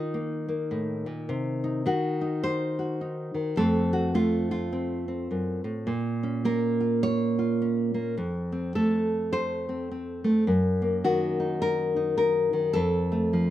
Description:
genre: folk, solo fingerstyle acoustic guitar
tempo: 105 BPM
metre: 4/4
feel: swing 60% on 8ths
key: unclear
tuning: A4 = 440 Hz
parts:
  - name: nylon-string guitar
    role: solo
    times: 0.0-13.5 s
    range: F2 to Db5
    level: -24 LUFS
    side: equal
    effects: none
room: little or no reverb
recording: recorded outdoors, with no room sound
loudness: -24 LUFS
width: side -12 dB against mid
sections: 0.0-13.5 A section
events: none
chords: 0.0 Eb5; 1.3 Cdim; 3.6 F; 5.9 Bbm; 8.2 F; 10.5 Ebm/Gb; 12.8 F

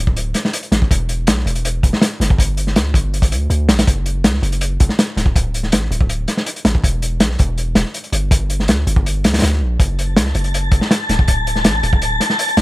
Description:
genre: drum and bass, jungle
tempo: 162 BPM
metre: 4/4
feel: straight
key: unclear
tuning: A4 = 440 Hz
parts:
  - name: long sustained 808-style bass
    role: bass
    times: 0.0-12.6 s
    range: D1 to D2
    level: -18 LUFS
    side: equal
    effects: none
  - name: crunchy breakbeat drum kit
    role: drums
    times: 0.1-12.6 s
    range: hi-hat, kick drum, snare drum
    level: -15 LUFS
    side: equal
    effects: none
  - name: wind-like tuned noise texture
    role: texture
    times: 10.2-12.6 s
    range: A5 to A6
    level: -20 LUFS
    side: left 2 dB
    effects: built-in reverb
room: little or no reverb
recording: vinyl crackle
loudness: -14 LUFS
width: side -18 dB against mid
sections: 0.0-12.6 A section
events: none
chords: 0.0 D5; 0.9 Em; 2.4 G5; 3.9 F#5; 5.4 D5; 6.8 Em; 8.3 G5; 9.8 F#m; 11.3 D5

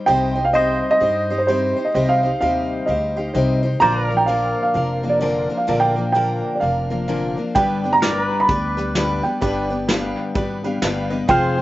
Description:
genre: honky-tonk and classic country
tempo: 128 BPM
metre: 4/4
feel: swing 62% on 8ths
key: C minor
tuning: A4 = 440 Hz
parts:
  - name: picked steel-string acoustic guitar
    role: accompaniment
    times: 0.0-11.6 s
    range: G2 to C5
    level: -23 LUFS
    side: left 3 dB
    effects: none
  - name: dark upright piano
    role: second line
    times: 0.1-11.6 s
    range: C5 to B5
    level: -19 LUFS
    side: right 2 dB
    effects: slapback echo
  - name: honky-tonk upright piano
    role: accompaniment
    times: 0.1-11.6 s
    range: F4 to G5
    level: -29 LUFS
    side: right 3 dB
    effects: slapback echo
  - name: upright bass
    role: bass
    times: 0.1-11.6 s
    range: F1 to G2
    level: -25 LUFS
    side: equal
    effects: none
  - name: pedal steel guitar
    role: sustained chords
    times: 0.6-11.6 s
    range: Bb4 to F5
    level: -27 LUFS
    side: left 1 dB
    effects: wide subtle chorus
  - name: soft brush drum kit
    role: drums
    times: 7.6-11.4 s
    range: hi-hat, kick drum, snare drum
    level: -24 LUFS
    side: equal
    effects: none
room: little or no reverb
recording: nothing above 7.7 kHz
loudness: -17 LUFS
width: side -16 dB against mid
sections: 0.1-11.6 A section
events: upright piano solo 0.1-11.6; honky-tonk piano fill 10.6-11.3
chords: 0.1 Cm; 3.8 Bb; 7.6 G

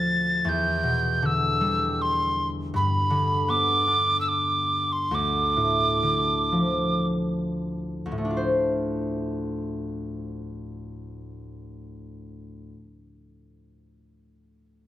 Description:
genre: celtic folk, Celtic slow air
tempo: 48-81 BPM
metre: 3/4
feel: rubato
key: D dorian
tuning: A4 = 440 Hz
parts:
  - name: breathy mellow tin whistle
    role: melody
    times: 0.0-7.1 s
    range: B5 to A6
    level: -23 LUFS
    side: right 1 dB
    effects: slapback echo
  - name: concert harp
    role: accompaniment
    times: 0.0-13.0 s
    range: D2 to C5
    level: -27 LUFS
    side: left 1 dB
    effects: none
room: moderate recital hall reverb, RT60 1.7 s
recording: close, detailed microphones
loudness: -22 LUFS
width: side -12 dB against mid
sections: 0.0-8.2 A section; 8.2-11.8 B section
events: slowing down 2.7-8.2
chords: 0.4 Em7; 2.7 G; 5.1 Dm; 8.2 Dm7

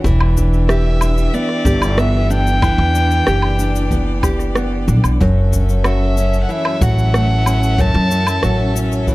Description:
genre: folktronica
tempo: 93 BPM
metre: 4/4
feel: straight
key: E dorian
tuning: A4 = 440 Hz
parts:
  - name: bright string quartet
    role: sustained chords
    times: 0.0-9.1 s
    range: E3 to E5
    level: -26 LUFS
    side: right 1 dB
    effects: none
  - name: nylon-string guitar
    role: arpeggios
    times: 0.0-9.1 s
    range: F#2 to G4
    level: -20 LUFS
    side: equal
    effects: tape echo
  - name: upright bass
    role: bass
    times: 0.0-9.1 s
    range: E1 to F#2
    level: -16 LUFS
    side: equal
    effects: tube saturation
  - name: kick drum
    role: drums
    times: 0.0-9.1 s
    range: none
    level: -20 LUFS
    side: equal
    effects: none
  - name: electronic cabasa, woodblock and rim click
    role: drums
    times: 0.1-9.1 s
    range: none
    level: -23 LUFS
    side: equal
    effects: overdrive
  - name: warm violin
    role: melody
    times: 0.7-8.8 s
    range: D5 to A5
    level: -22 LUFS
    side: equal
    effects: vintage 12-bit sampler grit, tape echo
room: little or no reverb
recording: dry, close 1970s-style studio recording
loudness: -13 LUFS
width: side -19 dB against mid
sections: 0.0-9.1 A section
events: none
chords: 0.0 Em7; 5.2 F#m7

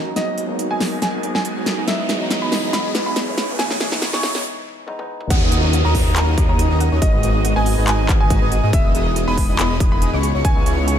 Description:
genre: future bass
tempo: 140 BPM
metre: 4/4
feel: swing 54% on 16ths, half-time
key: G# minor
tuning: A4 = 443 Hz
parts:
  - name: warm grand piano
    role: melody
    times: 0.0-10.7 s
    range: D#5 to C#6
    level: -26 LUFS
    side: right 2 dB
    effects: sidechain pumping, digital delay
  - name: tine electric piano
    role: accompaniment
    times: 0.0-5.3 s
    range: E3 to D#4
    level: -29 LUFS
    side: left 2 dB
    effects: sidechain pumping, ping-pong delay
  - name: airy breathy pad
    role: sustained chords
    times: 0.0-11.0 s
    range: C#3 to B4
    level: -30 LUFS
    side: right 1 dB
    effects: chorus, phaser, sidechain pumping
  - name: big bright polysynth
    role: riff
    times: 0.0-11.0 s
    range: B3 to D#5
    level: -26 LUFS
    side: right 2 dB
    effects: lush chorus, sidechain pumping
  - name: wide detuned saw bass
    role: bass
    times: 0.0-11.0 s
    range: E1 to G#2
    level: -21 LUFS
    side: equal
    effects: chorus, sidechain pumping, high-pass filter
  - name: riser and downlifter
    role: sound effects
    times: 0.4-8.7 s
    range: none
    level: -27 LUFS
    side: right 1 dB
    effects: none
  - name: big-room dance drum kit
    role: drums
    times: 0.2-11.0 s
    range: crash cymbal, handclaps, hi-hat, snare drum, toms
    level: -24 LUFS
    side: equal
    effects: studio reverb
  - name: airy dreamy lead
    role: arpeggios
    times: 5.3-11.0 s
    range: C#6 to D#6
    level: -29 LUFS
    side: equal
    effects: chorus, sidechain pumping
  - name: soft round pluck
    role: arpeggios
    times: 5.3-10.9 s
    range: F#4 to G#5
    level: -31 LUFS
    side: left 4 dB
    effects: chorus, sidechain pumping, ping-pong delay
  - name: electronic kick drum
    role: drums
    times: 5.3-10.5 s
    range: none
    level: -18 LUFS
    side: equal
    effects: studio reverb
room: light reverb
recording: high-pass filter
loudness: -16 LUFS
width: side -9 dB against mid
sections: 0.0-5.3 A section; 5.3-11.0 B section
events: build-up 0.0-5.3; drum fill 0.0-4.4, 4.9-5.3; filter sweep on analog polysynth 0.0-5.3; filter sweep 0.0-5.3; riser 0.4-4.4; break 4.4-5.3; drop 5.3-11.0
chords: 0.2 G#m7; 1.9 Emaj7; 3.4 C#m9; 5.3 D#m7; 7.0 G#m7; 8.7 Emaj7; 10.2 C#m9

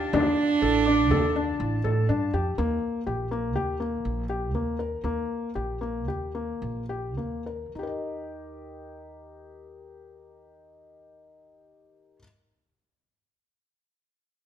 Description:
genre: contemporary instrumental, chamber music in an uneven meter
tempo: 102-123 BPM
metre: 5/4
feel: straight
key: Eb lydian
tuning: A4 = 440 Hz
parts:
  - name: rich cello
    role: melody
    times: 0.0-2.0 s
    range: D4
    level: -25 LUFS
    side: right 10 dB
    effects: none
  - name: warm woodwind section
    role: sustained chords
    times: 0.0-2.5 s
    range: F4 to A5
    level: -37 LUFS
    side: left 3 dB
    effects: none
  - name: felt-muted upright piano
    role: arpeggios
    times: 0.0-12.2 s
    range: Bb3 to Eb5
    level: -29 LUFS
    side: left 3 dB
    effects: none
  - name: upright bass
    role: bass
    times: 0.0-12.2 s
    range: A1 to A2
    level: -30 LUFS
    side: right 2 dB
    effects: none
  - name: frame drum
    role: percussion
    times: 0.1-2.1 s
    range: none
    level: -32 LUFS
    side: left 4 dB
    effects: none
  - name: celesta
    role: texture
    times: 0.9-1.4 s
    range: D6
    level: -33 LUFS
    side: left 13 dB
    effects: none
room: moderate recital hall reverb, RT60 1.3 s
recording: close, detailed microphones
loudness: -25 LUFS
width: side -9 dB against mid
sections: 0.0-2.6 A section; 2.6-7.7 B section; 7.7-10.7 C section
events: slowing down 3.5-7.7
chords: 0.0 Dm; 2.6 Eb

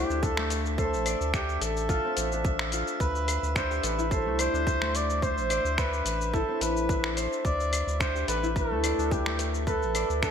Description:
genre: organic downtempo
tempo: 108 BPM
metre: 4/4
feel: swing 53% on 16ths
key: D dorian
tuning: A4 = 441 Hz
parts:
  - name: trumpet with bucket mute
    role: melody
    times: 0.0-10.3 s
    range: G4 to D5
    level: -30 LUFS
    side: right 1 dB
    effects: ping-pong delay
  - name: concert harp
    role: arpeggios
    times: 0.0-10.3 s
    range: A3 to D5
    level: -31 LUFS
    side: left 2 dB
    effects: ping-pong delay
  - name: warm sub bass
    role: bass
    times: 0.0-10.3 s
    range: A1 to D2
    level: -32 LUFS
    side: equal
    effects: sidechain pumping
  - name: drifting glass-harmonics texture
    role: texture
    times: 0.0-10.3 s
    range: E5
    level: -38 LUFS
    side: right 1 dB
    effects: chorus, built-in reverb
  - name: dusty soul sampler-style drum kit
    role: drums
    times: 0.1-10.3 s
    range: cabasa, claves, finger snaps, hi-hat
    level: -32 LUFS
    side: left 2 dB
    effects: gated reverb
  - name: electronic kick drum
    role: drums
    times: 0.2-10.3 s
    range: none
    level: -30 LUFS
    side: equal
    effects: none
room: moderate plate reverb, RT60 3.1 s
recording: bright 1980s-style digital production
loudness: -25 LUFS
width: side -7 dB against mid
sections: 0.0-10.3 A section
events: none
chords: 0.0 Dm7; 7.4 G

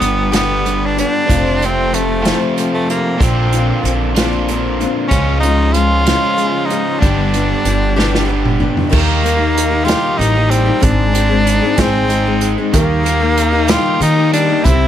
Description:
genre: folk rock and heartland rock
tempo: 63 BPM (dotted quarters)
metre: 6/8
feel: straight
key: unclear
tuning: A4 = 440 Hz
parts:
  - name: bright tenor saxophone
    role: melody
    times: 0.0-14.9 s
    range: A3 to F4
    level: -17 LUFS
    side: equal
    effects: none
  - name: picked steel-string acoustic guitar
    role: accompaniment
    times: 0.0-14.9 s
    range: F2 to Ab4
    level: -20 LUFS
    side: left 6 dB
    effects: none
  - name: crunchy overdriven guitar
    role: riff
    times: 0.0-14.9 s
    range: F2 to Ab4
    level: -19 LUFS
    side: right 1 dB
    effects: none
  - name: upright bass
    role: bass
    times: 0.0-14.9 s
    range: F1 to Eb3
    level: -17 LUFS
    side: equal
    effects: none
  - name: unplugged drum kit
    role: drums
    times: 0.0-14.8 s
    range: crash cymbal, hi-hat, kick drum, snare drum, toms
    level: -18 LUFS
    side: right 1 dB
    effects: none
  - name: dark grand piano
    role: accompaniment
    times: 8.9-14.9 s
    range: Bb3 to C5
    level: -28 LUFS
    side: right 7 dB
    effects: none
  - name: bright tonewheel organ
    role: sustained chords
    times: 12.7-14.9 s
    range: Bb4 to E6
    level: -28 LUFS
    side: right 1 dB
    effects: none
room: small room ambience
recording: none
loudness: -12 LUFS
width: side -10 dB against mid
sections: 0.0-8.9 A section; 8.9-14.9 B section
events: drum fill 8.0-8.9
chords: 0.0 G; 1.3 F; 3.2 Bbadd9; 5.1 Db; 7.0 G; 8.9 Eb; 10.8 Ab; 12.7 Eb

